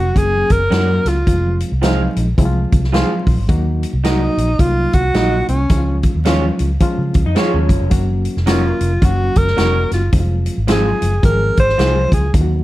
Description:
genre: uptempo 1960s-style soul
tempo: 108 BPM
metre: 4/4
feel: swing 61% on 8ths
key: unclear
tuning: A4 = 440 Hz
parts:
  - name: breathy alto saxophone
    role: melody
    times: 0.0-12.3 s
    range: Db4 to C5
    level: -18 LUFS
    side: equal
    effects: none
  - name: barky reed electric piano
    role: accompaniment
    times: 0.0-12.6 s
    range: F3 to C6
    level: -22 LUFS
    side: left 2 dB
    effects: overdrive, fast tremolo, tube saturation
  - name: vintage muted fingered electric bass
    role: bass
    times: 0.0-12.6 s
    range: F1 to Db3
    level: -17 LUFS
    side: equal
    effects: none
  - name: swinging big-band drum kit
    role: drums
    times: 0.2-12.5 s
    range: hi-hat, kick drum, snare drum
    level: -18 LUFS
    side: equal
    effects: none
  - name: electric guitar through a small old amp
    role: stabs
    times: 0.7-12.0 s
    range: C4 to Gb5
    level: -22 LUFS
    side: right 4 dB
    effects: slapback echo
  - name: electric guitar through a small old amp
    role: riff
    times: 7.3-7.9 s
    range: F3 to F4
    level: -24 LUFS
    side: left 2 dB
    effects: none
room: light reverb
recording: dark, warm production, vinyl crackle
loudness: -13 LUFS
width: side -16 dB against mid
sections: 0.0-12.6 A section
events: reed electric piano fill 2.7-3.5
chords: 0.0 Gb; 1.3 Fm; 3.5 Ebm; 5.7 Db; 7.9 Gb; 10.1 Fm

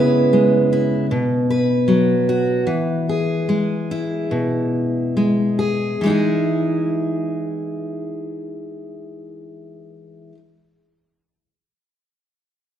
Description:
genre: folk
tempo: 70-77 BPM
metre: 4/4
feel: straight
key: E major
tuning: A4 = 440 Hz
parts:
  - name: fingerpicked steel-string acoustic guitar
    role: solo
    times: 0.0-10.4 s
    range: B2 to B4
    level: -17 LUFS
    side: equal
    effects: none
room: wet recital hall reverb, RT60 1.5 s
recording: recorded in a church or concert hall, lossy compression artefacts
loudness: -17 LUFS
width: side -10 dB against mid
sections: 0.0-6.0 A section; 6.0-9.5 B section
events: slowing down 0.0-6.0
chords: 0.0 C#m7; 1.1 B5; 2.7 E; 6.0 Emaj7

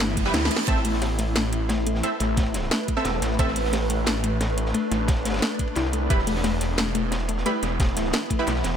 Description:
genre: dark technical drum and bass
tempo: 177 BPM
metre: 4/4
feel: straight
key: unclear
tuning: A4 = 439 Hz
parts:
  - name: swarming drone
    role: sustained chords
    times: 0.0-8.8 s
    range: E3 to B4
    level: -30 LUFS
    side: equal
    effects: built-in reverb, sidechain pumping
  - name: warbly dusty pluck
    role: arpeggios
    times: 0.0-8.6 s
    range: A3 to E4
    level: -30 LUFS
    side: left 5 dB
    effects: chorus, cassette tape, sidechain pumping, dub echo
  - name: snarling distorted saw bass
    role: bass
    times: 0.0-8.8 s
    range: E1 to D2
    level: -26 LUFS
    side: equal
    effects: distortion, tube saturation, sidechain pumping
  - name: crunchy breakbeat drum kit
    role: drums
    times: 0.0-8.8 s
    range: hi-hat, ride cymbal, snare drum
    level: -34 LUFS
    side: equal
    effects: high-pass filter on cymbals, high-pass filter on hats, high-pass filter on snare, high-pass filter on room
  - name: drum and bass drum kit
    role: drums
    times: 0.0-8.7 s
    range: hi-hat, snare drum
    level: -27 LUFS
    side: equal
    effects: none
  - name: reverse cymbal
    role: sound effects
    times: 0.1-0.7 s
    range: none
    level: -34 LUFS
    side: right 5 dB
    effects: none
  - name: electronic kick drum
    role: drums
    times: 0.2-8.4 s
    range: none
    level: -24 LUFS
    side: equal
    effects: none
  - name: orchestra-hit-like synth stab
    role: stabs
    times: 0.3-3.5, 6.1-8.4 s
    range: G3 to E5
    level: -29 LUFS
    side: right 3 dB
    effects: built-in reverb, dub echo
room: light reverb, digital ambience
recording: none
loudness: -21 LUFS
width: side -8 dB against mid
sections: 0.0-8.8 A section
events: filter sweep on synth arpeggio sound 0.0-8.8; reverse cymbal 0.1-0.7; drum fill 0.3-0.7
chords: 0.0 Em; 0.7 Am; 6.1 Em

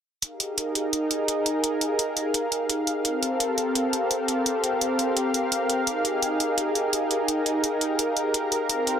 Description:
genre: liquid drum and bass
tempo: 170 BPM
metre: 4/4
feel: swing 54% on 16ths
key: F minor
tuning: A4 = 438 Hz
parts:
  - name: lush unison pad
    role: sustained chords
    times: 0.2-9.0 s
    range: C4 to F5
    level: -24 LUFS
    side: equal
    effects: chorus
  - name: electronic hi-hat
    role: drums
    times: 0.2-8.9 s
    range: none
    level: -26 LUFS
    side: right 1 dB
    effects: overdrive
room: moderate plate reverb, RT60 1.0 s, digital ambience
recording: dense, heavily limited modern master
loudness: -23 LUFS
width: side -8 dB against mid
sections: 0.2-9.0 A section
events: none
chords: 0.2 Fm11; 3.0 Gm11; 5.9 Fm11

